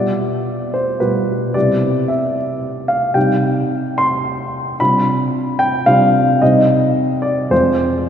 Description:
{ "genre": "classical, romantic character piece for solo piano", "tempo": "110 BPM", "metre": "3/4", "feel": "rubato", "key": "C major, C minor from 3.2 s", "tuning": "A4 = 440 Hz", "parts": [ { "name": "dark grand piano", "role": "solo", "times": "0.0-8.1 s", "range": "F2 to C6", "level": "-14 LUFS", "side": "equal", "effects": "none" } ], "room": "wet church reverb, RT60 3.7 s", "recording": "heard from further back in the room", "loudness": "-14 LUFS", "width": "side -8 dB against mid", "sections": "0.0-8.1 A section", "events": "none", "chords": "0.0 G7/B; 1.5 C; 3.2 Cm; 4.8 G7/C; 6.4 Cm; 7.5 Fm" }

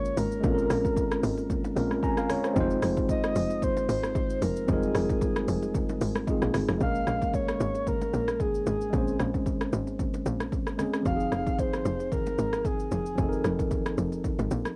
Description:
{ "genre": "amapiano", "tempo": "113 BPM", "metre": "4/4", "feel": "swing 55% on 16ths", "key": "Bb minor", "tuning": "A4 = 440 Hz", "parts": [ { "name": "breathy flute-like synth lead", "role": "melody", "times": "0.0-13.4 s", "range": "Ab4 to F5", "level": "-34 LUFS", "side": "equal", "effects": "chorus, cassette tape, analog delay" }, { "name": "tine electric piano", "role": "accompaniment", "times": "0.0-14.8 s", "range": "F3 to Bb5", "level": "-32 LUFS", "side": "equal", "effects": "cassette tape" }, { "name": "tight log drum bass", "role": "bass", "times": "0.0-14.6 s", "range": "F1 to Bb1", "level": "-34 LUFS", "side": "equal", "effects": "none" }, { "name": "deep house drum kit", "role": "drums", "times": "0.1-14.8 s", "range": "hi-hat, kick drum, rim click, shaker", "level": "-34 LUFS", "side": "equal", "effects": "cassette tape" }, { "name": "congas and bongos", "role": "percussion", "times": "0.2-14.8 s", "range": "none", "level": "-43 LUFS", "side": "equal", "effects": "none" } ], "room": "moderate small room reverb, RT60 0.5 s", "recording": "home recording on cassette", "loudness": "-28 LUFS", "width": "mono", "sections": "0.0-6.8 A section; 6.8-14.8 B section", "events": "drop 0.0-6.8; tine electric piano fill 1.8-2.6", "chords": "0.0 Bbm9; 2.6 Fm7; 6.8 Bbm9; 11.1 Fm7" }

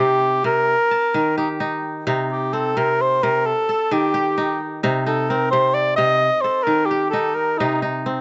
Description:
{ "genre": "west african traditional, West African string and xylophone music", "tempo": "87 BPM (dotted quarters)", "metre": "12/8", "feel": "straight", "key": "C dorian", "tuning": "A4 = 440 Hz", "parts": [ { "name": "mellow cor anglais", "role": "melody", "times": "0.0-7.8 s", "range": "Eb4 to Eb5", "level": "-20 LUFS", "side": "equal", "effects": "slapback echo" }, { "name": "kora", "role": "arpeggios", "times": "0.0-8.2 s", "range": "C3 to A5", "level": "-25 LUFS", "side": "equal", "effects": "none" } ], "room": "little or no reverb", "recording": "recorded outdoors, with no room sound, nothing above 7.9 kHz", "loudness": "-20 LUFS", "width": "mono", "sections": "0.0-8.2 A section", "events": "cor anglais solo 0.0-8.2", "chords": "0.0 Cm; 0.7 Eb; 2.1 Cm; 3.5 Eb; 4.8 Cm; 6.2 Eb; 7.6 Cm" }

